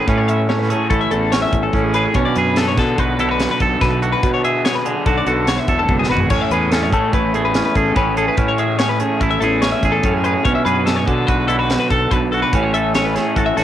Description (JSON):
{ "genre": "math rock and midwest emo", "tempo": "145 BPM", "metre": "5/4", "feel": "straight", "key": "A major", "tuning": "A4 = 440 Hz", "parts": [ { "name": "twangy electric guitar", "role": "accompaniment", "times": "0.0-13.6 s", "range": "E2 to A4", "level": "-19 LUFS", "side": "right 5 dB", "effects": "cassette tape" }, { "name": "twelve-string electric guitar", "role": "arpeggios", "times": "0.0-13.6 s", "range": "G#4 to E5", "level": "-20 LUFS", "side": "left 6 dB", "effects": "cassette tape" }, { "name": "raw garage guitar", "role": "riff", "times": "0.0-13.6 s", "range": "A2 to A4", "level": "-24 LUFS", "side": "left 2 dB", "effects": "overdrive, cassette tape" }, { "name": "fuzz fingered electric bass", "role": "bass", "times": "0.1-13.6 s", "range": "E1 to B2", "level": "-23 LUFS", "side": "equal", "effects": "overdrive" }, { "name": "crisp fusion drum kit", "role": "drums", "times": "0.1-13.6 s", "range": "crash cymbal, hi-hat, kick drum, snare drum, toms", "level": "-21 LUFS", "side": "equal", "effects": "cassette tape" } ], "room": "light reverb", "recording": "home recording on cassette", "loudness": "-14 LUFS", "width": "side -11 dB against mid", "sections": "0.0-13.6 A section", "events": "drum fill 5.9-6.3", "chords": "0.0 Amaj9; 2.2 Bm9; 6.3 Amaj9; 10.5 Bm9; 12.5 A6" }